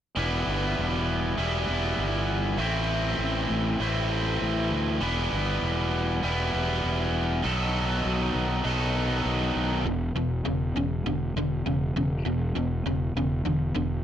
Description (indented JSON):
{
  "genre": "rock",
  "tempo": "99 BPM",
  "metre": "4/4",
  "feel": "straight",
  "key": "E minor",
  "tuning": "A4 = 441 Hz",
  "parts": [
    { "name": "biting overdriven guitar", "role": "riff", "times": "0.2-14.0 s", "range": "E2 to A4", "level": "-26 LUFS", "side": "equal", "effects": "none" },
    { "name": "fuzz fingered electric bass", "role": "bass", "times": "0.2-14.0 s", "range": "E1 to D2", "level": "-28 LUFS", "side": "equal", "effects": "overdrive" }
  ],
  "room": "digital ambience",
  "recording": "dry, close 1970s-style studio recording",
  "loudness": "-24 LUFS",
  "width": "side -10 dB against mid",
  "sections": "0.2-9.9 A section; 9.9-14.0 B section",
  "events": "none",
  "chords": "0.2 Em; 2.6 Am; 5.0 Em; 7.4 B7; 9.9 E5"
}